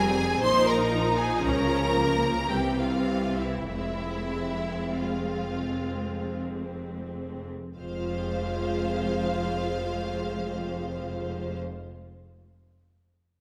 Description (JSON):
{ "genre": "classical, slow romantic movement for string orchestra", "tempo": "40-61 BPM", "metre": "3/4", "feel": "rubato", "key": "F minor", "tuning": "A4 = 441 Hz", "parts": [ { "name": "rich studio violin section", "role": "melody", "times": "0.0-11.6 s", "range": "E5 to C6", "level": "-35 LUFS", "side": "equal", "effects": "none" }, { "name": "rich symphonic violin section", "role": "second line", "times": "0.0-11.6 s", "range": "E4 to C5", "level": "-34 LUFS", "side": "equal", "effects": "none" }, { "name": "rich symphonic viola section", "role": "accompaniment", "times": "0.0-11.6 s", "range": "E3 to F4", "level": "-33 LUFS", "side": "equal", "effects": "none" }, { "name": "rich symphonic cello section", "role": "bass", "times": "0.0-11.6 s", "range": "F2 to Db3", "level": "-37 LUFS", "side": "equal", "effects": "none" }, { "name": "rich symphonic double bass section", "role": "bass", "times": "0.0-11.6 s", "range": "F1 to Db2", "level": "-36 LUFS", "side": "equal", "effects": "none" } ], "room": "wet scoring stage reverb, RT60 1.9 s", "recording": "none", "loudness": "-28 LUFS", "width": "mono", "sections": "0.0-7.8 A section; 7.8-11.7 B section", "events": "slowing down 0.0-7.8", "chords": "0.4 Bbm; 2.5 C; 3.7 Fm" }